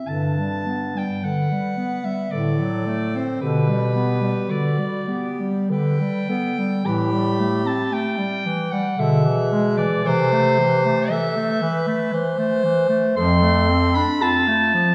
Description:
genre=classical, lyrical piece for single-reed quartet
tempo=47-59 BPM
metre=3/4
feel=rubato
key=G major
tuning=A4 = 440 Hz
part: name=warm soprano saxophone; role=melody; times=0.0-14.9 s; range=B4 to C6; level=-26 LUFS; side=equal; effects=none
part: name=clear alto saxophone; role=second line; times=0.0-14.9 s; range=F4 to C5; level=-29 LUFS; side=equal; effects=none
part: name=clear clarinet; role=accompaniment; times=0.0-14.9 s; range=D3 to D4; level=-24 LUFS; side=equal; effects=none
part: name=warm bass clarinet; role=bass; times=0.1-14.1 s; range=F2 to C3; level=-26 LUFS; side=equal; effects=none
room=wet scoring stage reverb, RT60 1.8 s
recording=heard from further back in the room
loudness=-21 LUFS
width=mono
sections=0.1-14.9 A section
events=none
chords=0.1 G; 2.3 D7/A; 3.4 G/B; 6.9 Am7; 9.0 E7/B; 10.1 Am/C; 13.2 Dm7/F

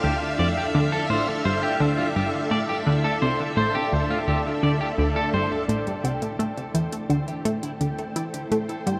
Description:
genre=ambient, sequencer-driven space music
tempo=85 BPM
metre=4/4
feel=straight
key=unclear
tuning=A4 = 440 Hz
part: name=string machine, full ensemble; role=sustained chords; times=0.0-9.0 s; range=A3 to F5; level=-30 LUFS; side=equal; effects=ensemble chorus, shimmer reverb
part: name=clean electric guitar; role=arpeggios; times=0.0-9.0 s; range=E4 to D5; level=-31 LUFS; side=equal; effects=delay, shimmer reverb
part: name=analog pluck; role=riff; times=0.0-9.0 s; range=D2 to E4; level=-27 LUFS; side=equal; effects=chorus, delay
part: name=bubbling stepped-filter texture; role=texture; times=0.0-9.0 s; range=D5 to G5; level=-38 LUFS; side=equal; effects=chorus, built-in reverb, shimmer reverb
part: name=electronic hi-hat and woodblock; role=percussion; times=5.7-9.0 s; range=none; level=-39 LUFS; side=equal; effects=overdrive, delay
room=wet huge ambient reverb, RT60 8.7 s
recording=none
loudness=-24 LUFS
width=mono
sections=0.0-5.7 A section; 5.7-9.0 B section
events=filter sweep on synth arpeggio sound 0.0-5.7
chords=0.0 Dm7; 5.7 Am

